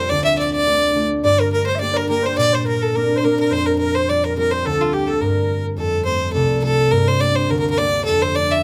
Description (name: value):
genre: celtic folk, Celtic reel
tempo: 210 BPM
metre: 4/4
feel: swing 54% on 8ths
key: G minor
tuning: A4 = 440 Hz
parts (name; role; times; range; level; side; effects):
- rich fiddle; melody; 0.0-8.6 s; F4 to E5; -21 LUFS; equal; plate reverb
- concert harp; accompaniment; 0.0-8.6 s; C2 to G4; -23 LUFS; equal; none
- reedy concert flute; second line; 1.2-5.7 s; G4 to E5; -25 LUFS; equal; none
room: moderate small room reverb, RT60 0.5 s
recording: none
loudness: -18 LUFS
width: mono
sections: 0.0-5.8 A section; 5.8-8.6 B section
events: none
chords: 0.1 Dm; 1.2 Gm; 2.4 Bbadd9; 3.5 Fsus2; 4.6 N.C.; 5.8 F; 6.9 Gm; 8.1 Dm/F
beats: | 0.09 0.37 0.66 0.94 | 1.23 1.51 1.80 2.08 | 2.37 2.65 2.94 3.22 | 3.51 3.79 4.08 4.36 | 4.65 4.93 5.22 5.50 | 5.79 6.07 6.36 6.64 | 6.93 7.21 7.50 7.78 | 8.07 8.35